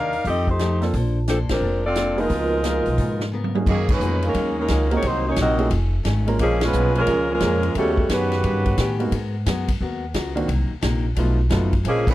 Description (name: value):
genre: jazz, big band swing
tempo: 176 BPM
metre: 4/4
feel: swing 65% on 8ths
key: F# major from 3.7 s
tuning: A4 = 441 Hz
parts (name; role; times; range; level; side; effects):
- mellow saxophone section; melody; 0.0-9.0, 11.9-12.1 s; D#3 to F5; -22 LUFS; left 1 dB; none
- picked steel-string acoustic guitar; accompaniment; 0.0-12.1 s; F2 to C5; -31 LUFS; left 5 dB; none
- upright bass; bass; 0.0-12.1 s; F1 to A2; -23 LUFS; equal; none
- swinging big-band drum kit; drums; 0.1-12.1 s; crash cymbal, hi-hat, kick drum, ride cymbal, snare drum, toms; -27 LUFS; equal; none
- warm grand piano; accompaniment; 0.8-11.7 s; D#3 to A#4; -26 LUFS; right 2 dB; none
- dark trombone section; second line; 2.2-9.0, 11.9-12.1 s; Cb3 to Eb4; -27 LUFS; right 5 dB; none
room: light reverb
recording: dry, close 1970s-style studio recording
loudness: -19 LUFS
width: side -15 dB against mid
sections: 0.0-3.7 A section; 3.7-12.1 B section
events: band accent 1.4, 3.8, 6.6; drum fill 3.3-3.7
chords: 0.2 F9; 0.9 Bbmaj9; 2.3 Db13; 3.7 F#69; 5.0 Cm7b5; 5.7 F7alt; 6.4 A#m7; 7.8 D#7alt; 9.1 G#m9; 10.5 Cm7b5; 11.2 B7#11